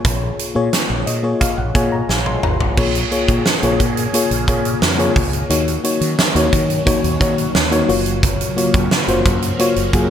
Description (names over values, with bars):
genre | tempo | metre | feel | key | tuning
1980s-style pop | 88 BPM | 4/4 | straight | unclear | A4 = 443 Hz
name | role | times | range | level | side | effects
FM electric piano with tremolo | accompaniment | 0.0-10.1 s | Bb3 to C6 | -19 LUFS | left 3 dB | none
mellow fretless electric bass | bass | 0.0-10.1 s | Gb1 to Eb3 | -22 LUFS | right 1 dB | none
huge arena drum kit | drums | 0.0-10.1 s | crash cymbal, hi-hat, kick drum, snare drum, toms | -18 LUFS | right 1 dB | gated reverb
phased string machine | sustained chords | 3.2-10.1 s | Db3 to Ab4 | -24 LUFS | right 1 dB | ensemble chorus, phaser
room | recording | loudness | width
moderate plate reverb, RT60 2.4 s | bright 1980s-style digital production | -14 LUFS | side -9 dB against mid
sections
0.0-2.8 A section; 2.8-10.1 B section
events
FM electric piano fill 0.7-2.8; drum fill 2.1-2.8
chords
0.0 Bbm7; 5.5 Ebm7; 7.9 Gbmaj7